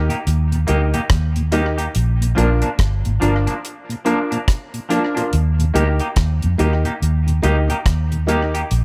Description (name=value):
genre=roots reggae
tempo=71 BPM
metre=4/4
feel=swing 62% on 16ths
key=Eb major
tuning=A4 = 440 Hz
part: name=warm upright piano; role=stabs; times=0.0-8.5 s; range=D4 to Bb4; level=-25 LUFS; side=equal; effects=none
part: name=vintage muted fingered electric bass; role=bass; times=0.0-8.8 s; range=G1 to F2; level=-20 LUFS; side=equal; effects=none
part: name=clean electric guitar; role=accompaniment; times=0.1-8.6 s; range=F3 to G4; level=-27 LUFS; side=equal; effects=spring reverb, tape echo
part: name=mellow tonewheel organ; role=accompaniment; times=0.1-8.4 s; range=Eb2 to Eb4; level=-28 LUFS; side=equal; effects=slow rotary speaker
part: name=deep reggae drum kit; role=drums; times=0.1-8.8 s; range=hi-hat, kick drum, rim click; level=-23 LUFS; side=equal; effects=none
room=small room ambience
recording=none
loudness=-18 LUFS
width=mono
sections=0.0-8.8 A section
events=none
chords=0.0 Eb; 2.0 Bb; 5.3 Eb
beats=0.27 1.11 | 1.96 2.80 3.64 4.49 | 5.33 6.17 7.02 7.86 | 8.71